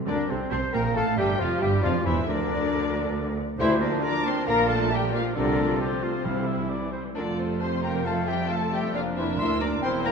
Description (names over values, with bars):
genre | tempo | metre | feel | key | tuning
quick classical-period movement for symphony orchestra | 136 BPM | 4/4 | straight | F major | A4 = 440 Hz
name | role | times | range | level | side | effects
muted chamber violin section | melody | 0.1-10.1 s | C5 to E6 | -33 LUFS | left 4 dB | none
concert flute | second line | 0.1-10.1 s | A4 to C6 | -32 LUFS | left 2 dB | none
muted chamber violin section | second line | 0.1-10.1 s | C4 to E5 | -32 LUFS | left 3 dB | none
warm clarinet | second line | 0.1-10.1 s | C4 to C5 | -34 LUFS | left 3 dB | none
warm oboe | second line | 0.1-10.1 s | F4 to C6 | -35 LUFS | right 1 dB | none
muted studio viola section | accompaniment | 0.1-10.1 s | C3 to F4 | -32 LUFS | right 2 dB | none
mellow French horn section | sustained chords | 0.1-10.1 s | C3 to E4 | -32 LUFS | left 3 dB | none
muted chamber cello section | bass | 0.1-10.1 s | C2 to C3 | -31 LUFS | right 3 dB | none
muted chamber double bass section | bass | 0.1-10.1 s | E1 to D2 | -32 LUFS | right 4 dB | none
timpani | percussion | 1.8-2.5, 6.3-6.9 s | F2 to C3 | -35 LUFS | left 1 dB | none
room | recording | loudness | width
wet concert hall reverb, RT60 2.0 s | minimal, uncompressed stereo recording | -23 LUFS | side -5 dB against mid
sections
0.1-10.1 A section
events
none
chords
0.1 F; 1.8 Dm9/E; 2.7 Bb/D; 4.5 Bb; 5.4 F/C; 6.3 C; 7.2 F; 8.9 Bb/F